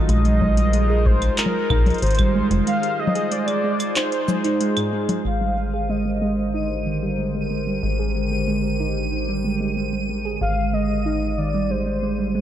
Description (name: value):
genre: IDM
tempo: 93 BPM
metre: 4/4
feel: straight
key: Ab lydian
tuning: A4 = 440 Hz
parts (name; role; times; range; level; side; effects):
- warbly tape-like pad; sustained chords; 0.0-12.4 s; D3 to C5; -29 LUFS; right 1 dB; chorus, built-in reverb
- warm velvety synth lead; melody; 0.1-12.4 s; Bb4 to F5; -26 LUFS; left 1 dB; chorus, tape echo
- harp-like synth pluck; arpeggios; 0.1-12.4 s; Ab2 to Ab4; -24 LUFS; right 3 dB; chorus, tape echo
- metallic FM bass; bass; 0.1-12.4 s; F1 to Bb1; -24 LUFS; equal; tube saturation
- booming analog drum machine; drums; 0.1-5.2 s; cabasa, claves, congas, handclaps, hi-hat; -25 LUFS; left 2 dB; none
- electronic kick drum; drums; 0.4-2.3 s; none; -23 LUFS; equal; none
- bubbling stepped-filter texture; texture; 5.9-12.4 s; Eb7; -34 LUFS; equal; chorus, built-in reverb
room: light reverb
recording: dark, warm production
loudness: -19 LUFS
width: side -11 dB against mid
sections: 0.0-5.3 A section; 5.3-12.4 B section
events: break 2.7-5.3; filter sweep on ambient pad 5.3-12.4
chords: 0.1 Bb9sus4; 5.3 Abmaj9#11